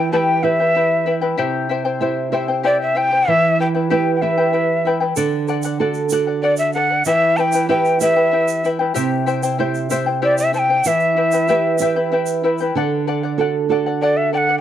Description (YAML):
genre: andean folk, Andean ensemble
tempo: 63 BPM (dotted quarters)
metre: 6/8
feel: straight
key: E minor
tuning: A4 = 440 Hz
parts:
  - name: breathy quena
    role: melody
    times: 0.0-14.6 s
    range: D5 to A5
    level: -17 LUFS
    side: left 1 dB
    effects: none
  - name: charango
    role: accompaniment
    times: 0.0-14.6 s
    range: E4 to G5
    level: -21 LUFS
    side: left 5 dB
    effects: none
  - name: nylon-string guitar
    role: accompaniment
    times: 0.0-14.6 s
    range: C3 to C5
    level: -20 LUFS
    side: right 7 dB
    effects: none
  - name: egg shaker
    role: percussion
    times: 5.2-12.7 s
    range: none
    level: -30 LUFS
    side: right 9 dB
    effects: none
room: studio reverb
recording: dry, close 1970s-style studio recording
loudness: -15 LUFS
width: side -10 dB against mid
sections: 0.0-12.7 A section; 12.7-14.6 A section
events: none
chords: 0.0 Em; 1.4 C; 3.3 Em; 5.2 D; 7.1 Em; 9.0 C; 10.8 Em; 12.7 D